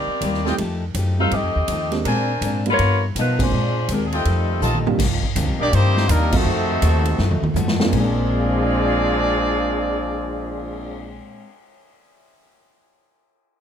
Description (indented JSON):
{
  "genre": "jazz, big band swing",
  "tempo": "163 BPM",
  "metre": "4/4",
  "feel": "swing 64% on 8ths",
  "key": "Bb mixolydian",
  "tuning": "A4 = 440 Hz",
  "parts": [
    { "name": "dark saxophone section", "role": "melody", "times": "0.0-4.9 s", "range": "F3 to F5", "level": "-23 LUFS", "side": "left 2 dB", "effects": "none" },
    { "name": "picked steel-string acoustic guitar", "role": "accompaniment", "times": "0.0-11.5 s", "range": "G2 to G4", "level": "-28 LUFS", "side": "left 4 dB", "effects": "none" },
    { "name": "upright bass", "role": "bass", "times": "0.0-11.2 s", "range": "Bb1 to B2", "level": "-22 LUFS", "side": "equal", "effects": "none" },
    { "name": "swinging big-band drum kit", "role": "drums", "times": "0.2-10.8 s", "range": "crash cymbal, cymbal swell, hi-hat, kick drum, ride cymbal, snare drum, toms", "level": "-25 LUFS", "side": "right 1 dB", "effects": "none" },
    { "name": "warm baby grand piano", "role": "accompaniment", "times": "0.5-11.3 s", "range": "Bb2 to Ab4", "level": "-26 LUFS", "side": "right 5 dB", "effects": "none" },
    { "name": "clear trumpet section", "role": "stabs", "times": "0.5-4.8 s", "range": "D4 to A5", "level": "-25 LUFS", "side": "left 1 dB", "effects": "none" },
    { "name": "clear trombone section", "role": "second line", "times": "4.1-11.2 s", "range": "Bb2 to D4", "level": "-26 LUFS", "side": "right 2 dB", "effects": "none" },
    { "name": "warm trumpet section", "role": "melody", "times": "5.6-11.2 s", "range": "G3 to D5", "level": "-23 LUFS", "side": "left 1 dB", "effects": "none" }
  ],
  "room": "little or no reverb",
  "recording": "close, detailed microphones",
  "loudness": "-17 LUFS",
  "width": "side -8 dB against mid",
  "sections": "0.0-5.0 A section; 5.0-7.9 B section; 7.9-10.9 C section",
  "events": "band accent 3.3, 6.3; drum fill 4.6-5.0, 7.2-7.9",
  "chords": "0.0 Cm7; 0.6 F9; 2.0 Bb9; 2.8 G7alt; 3.5 Bb9; 4.3 F9; 5.0 Cm11; 6.5 F7b9; 7.9 Bb9"
}